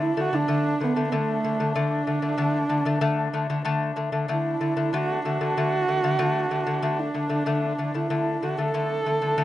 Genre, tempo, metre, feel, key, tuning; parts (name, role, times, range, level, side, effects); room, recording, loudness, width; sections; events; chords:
mongolian traditional, Mongolian folk; 94 BPM; 4/4; straight; D gong mode; A4 = 442 Hz
dark horsehead fiddle; melody; 0.0-9.4 s; A3 to A4; -26 LUFS; right 3 dB
lute; arpeggios; 0.0-9.4 s; D3 to A3; -25 LUFS; left 3 dB
rich horsehead fiddle; drone; 0.0-9.4 s; D4; -33 LUFS; right 1 dB; stereo widening
little or no reverb; recorded outdoors, with no room sound, nothing above 10.9 kHz; -22 LUFS; side -14 dB against mid
0.0-9.4 A section
0.0 D5